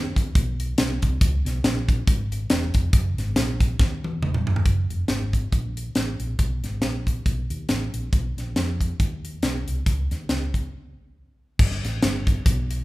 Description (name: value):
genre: uptempo gospel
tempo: 139 BPM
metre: 4/4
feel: swing 57% on 8ths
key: F# major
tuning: A4 = 439 Hz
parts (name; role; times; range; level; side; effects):
- hollow-body short-scale fingered electric bass; bass; 0.0-12.8 s; E1 to E#2; -26 LUFS; equal; none
- crisp fusion drum kit; drums; 0.2-12.8 s; crash cymbal, hi-hat, kick drum, snare drum, toms; -22 LUFS; equal; none
room: moderate recital hall reverb, RT60 1.4 s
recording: recorded in a church or concert hall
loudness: -21 LUFS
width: side -19 dB against mid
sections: 0.0-4.7 A section; 4.7-11.6 B section; 11.6-12.8 A section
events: drum fill 3.8-4.7; break 10.7-11.6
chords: none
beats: 0.35 0.78 | 1.21 1.64 2.07 2.50 | 2.93 3.36 3.80 4.23 | 4.66 5.09 5.53 5.96 | 6.39 6.83 7.26 7.70 | 8.13 8.56 9.00 9.43 | 9.87 10.30 10.73 11.16 | 11.59 12.03 12.46